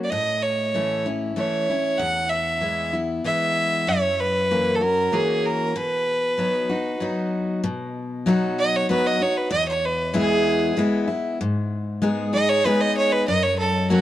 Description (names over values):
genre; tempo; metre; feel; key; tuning
country; 96 BPM; 3/4; straight; B major; A4 = 440 Hz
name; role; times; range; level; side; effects
clear fiddle; melody; 0.0-14.0 s; F#4 to F#5; -22 LUFS; right 2 dB; none
picked steel-string acoustic guitar; accompaniment; 0.0-14.0 s; E2 to G#4; -23 LUFS; left 2 dB; none
room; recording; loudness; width
moderate plate reverb, RT60 3.2 s; dark, warm production; -20 LUFS; side -13 dB against mid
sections
0.0-7.6 A section; 7.6-14.0 B section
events
fiddle solo 7.6-14.0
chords
0.1 A; 2.0 E; 3.9 F#7; 5.8 B; 9.5 E; 11.4 G#m; 13.3 F#